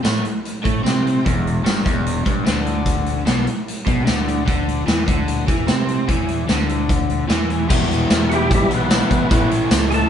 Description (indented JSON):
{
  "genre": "classic rock",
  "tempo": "149 BPM",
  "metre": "4/4",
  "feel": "straight",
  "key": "E minor",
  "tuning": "A4 = 440 Hz",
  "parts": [
    { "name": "overdriven electric guitar", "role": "riff", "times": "0.0-10.1 s", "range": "E2 to E4", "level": "-24 LUFS", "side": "left 7 dB", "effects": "none" },
    { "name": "overdriven electric guitar", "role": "riff", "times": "0.0-10.1 s", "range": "E2 to C4", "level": "-24 LUFS", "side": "right 6 dB", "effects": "none" },
    { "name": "fuzz fingered electric bass", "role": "bass", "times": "0.0-10.0 s", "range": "E1 to E3", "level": "-24 LUFS", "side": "equal", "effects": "overdrive" },
    { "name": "big rock drum kit", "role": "drums", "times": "0.0-10.0 s", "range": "crash cymbal, hi-hat, kick drum, snare drum, tambourine", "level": "-19 LUFS", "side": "equal", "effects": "none" },
    { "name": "overdriven tonewheel organ", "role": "melody", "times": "8.3-10.1 s", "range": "G3 to A4", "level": "-20 LUFS", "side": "equal", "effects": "chorus vibrato, stopped rotary speaker" }
  ],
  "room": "moderate studio reverb, RT60 0.8 s",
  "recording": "band playing live in one room, nothing above 11.0 kHz",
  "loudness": "-16 LUFS",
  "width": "side -8 dB against mid",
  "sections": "0.0-7.7 A section; 7.7-10.1 B section",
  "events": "tonewheel organ solo 7.7-10.1",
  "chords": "0.0 N.C.; 1.2 Em; 4.5 Cadd9/D; 7.7 Em; 9.3 A"
}